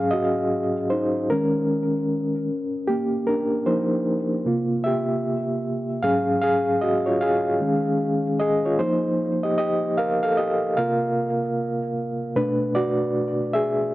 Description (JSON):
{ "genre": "R&B", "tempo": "76 BPM", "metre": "4/4", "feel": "swing 63% on 16ths", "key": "unclear", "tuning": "A4 = 440 Hz", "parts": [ { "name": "overdriven reed electric piano", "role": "solo", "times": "0.0-13.9 s", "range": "Ab2 to F5", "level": "-20 LUFS", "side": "equal", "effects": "medium tremolo, tape echo" } ], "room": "light reverb", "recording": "dry, close 1970s-style studio recording", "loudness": "-20 LUFS", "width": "side -16 dB against mid", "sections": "0.0-12.3 A section; 12.3-13.9 B section", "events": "reed electric piano solo 0.0-12.3, 12.3-13.9", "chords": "0.0 Ab7sus4; 1.3 Eb7sus4; 2.5 F7sus4; 4.4 C7sus4; 6.0 Ab7sus4; 7.6 Eb9sus4; 8.8 F9sus4; 10.8 C7sus4; 12.3 Bm7", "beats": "0.50 1.29 2.08 | 2.87 3.66 4.45 5.24 | 6.03 6.82 7.61 8.40 | 9.19 9.97 10.77 11.55 | 12.34 13.13 13.92" }